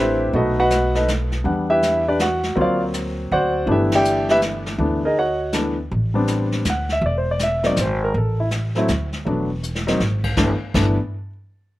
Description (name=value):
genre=jazz piano trio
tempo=161 BPM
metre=3/4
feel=swing 64% on 8ths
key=G major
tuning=A4 = 440 Hz
part: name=warm grand piano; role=melody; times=0.0-11.0 s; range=E3 to G5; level=-19 LUFS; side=equal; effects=none
part: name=upright bass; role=bass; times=0.0-11.0 s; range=E1 to E2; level=-23 LUFS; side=equal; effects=none
part: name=jazz brush drum kit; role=drums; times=0.3-10.9 s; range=brushed snare drum, crash cymbal, hi-hat, kick drum, ride cymbal, snare drum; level=-26 LUFS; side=equal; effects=none
room=little or no reverb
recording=none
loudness=-18 LUFS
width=side -16 dB against mid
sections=0.0-5.9 A section; 5.9-10.4 B section; 10.4-11.5 C section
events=band accent 3.9; drum fill 9.6-10.0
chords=0.3 B7; 1.5 Em7; 2.6 D7alt; 3.7 G6; 5.9 Am11; 6.7 D; 7.0 N.C.; 7.8 Abadd9; 8.1 A5; 8.9 N.C.; 9.3 E9sus4; 10.0 N.C.; 10.4 G6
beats=| 0.33 0.71 1.08 | 1.45 1.82 2.19 | 2.57 2.94 3.31 | 3.68 4.05 4.43 | 4.80 5.17 5.54 | 5.91 6.28 6.66 | 7.03 7.40 7.77 | 8.14 8.51 8.88 | 9.26 9.63 10.00 | 10.37 10.74